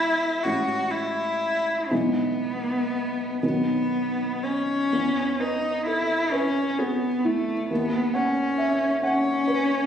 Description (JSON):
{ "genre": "classical, romantic duo for cello and grand piano", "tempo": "39-46 BPM (dotted quarters)", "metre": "6/8", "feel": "rubato", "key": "E major", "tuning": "A4 = 440 Hz", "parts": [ { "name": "rich cello", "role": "melody", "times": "0.0-9.9 s", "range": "A3 to F#4", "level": "-24 LUFS", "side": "left 1 dB", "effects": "none" }, { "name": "dark baby grand piano", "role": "accompaniment", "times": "0.0-9.9 s", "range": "G#1 to F#5", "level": "-27 LUFS", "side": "right 2 dB", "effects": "none" } ], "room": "wet recital hall reverb, RT60 1.5 s", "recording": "recorded on a phone in the room, studio reverb, compression", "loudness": "-22 LUFS", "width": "side -8 dB against mid", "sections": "0.0-4.9 A section; 4.9-9.9 B section", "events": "none", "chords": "0.4 Amaj7; 1.9 E/B; 3.4 B; 4.9 E; 7.7 B/D#" }